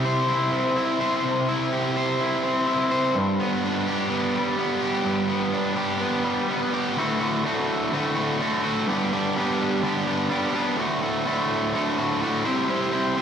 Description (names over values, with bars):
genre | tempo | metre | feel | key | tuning
rock | 126 BPM | 4/4 | straight | D mixolydian | A4 = 438 Hz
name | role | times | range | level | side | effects
cranked stack guitar | solo | 0.0-13.2 s | D2 to C5 | -22 LUFS | equal | overdrive, spring reverb, analog delay
room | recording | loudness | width
wet scoring stage reverb, RT60 1.8 s | big arena sound | -22 LUFS | side -8 dB against mid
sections
0.0-7.0 A section; 7.0-13.2 B section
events
none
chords
0.0 C; 3.2 G; 7.0 D; 8.9 G; 10.8 D; 12.5 C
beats
0.29 0.77 | 1.25 1.73 2.20 2.68 | 3.16 3.64 4.12 4.59 | 5.07 5.55 6.03 6.50 | 6.98 7.46 7.93 8.41 | 8.89 9.36 9.84 10.32 | 10.79 11.27 11.75 12.22 | 12.70 13.18